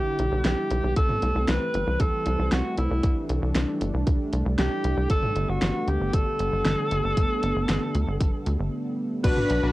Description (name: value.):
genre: synthwave.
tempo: 116 BPM.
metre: 4/4.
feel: straight.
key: unclear.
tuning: A4 = 435 Hz.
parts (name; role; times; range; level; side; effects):
clear alto saxophone; melody; 0.0-9.7 s; E4 to B4; -28 LUFS; equal; cassette tape, tape echo.
warm analog pad; sustained chords; 0.0-9.7 s; D3 to F#4; -30 LUFS; equal; chorus, sidechain pumping.
tight sequencer bass; bass; 0.0-9.7 s; G1 to D2; -26 LUFS; equal; tube saturation, sidechain pumping.
pop drum kit; drums; 0.2-9.6 s; crash cymbal, hi-hat, snare drum, toms; -29 LUFS; equal; cassette tape.
electronic kick drum; drums; 1.0-9.3 s; none; -24 LUFS; equal; cassette tape.
string machine, violins; second line; 9.2-9.7 s; B5; -38 LUFS; equal; ensemble chorus.
analog synth brass; stabs; 9.2-9.7 s; D4 to B4; -25 LUFS; left 2 dB; chorus, cassette tape.
room: moderate small room ambience, RT60 0.5 s.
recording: home recording on cassette.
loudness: -22 LUFS.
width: side -18 dB against mid.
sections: 0.0-9.2 A section.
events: break 8.7-9.2.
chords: 0.0 Em7; 1.0 C6; 5.1 Gadd9.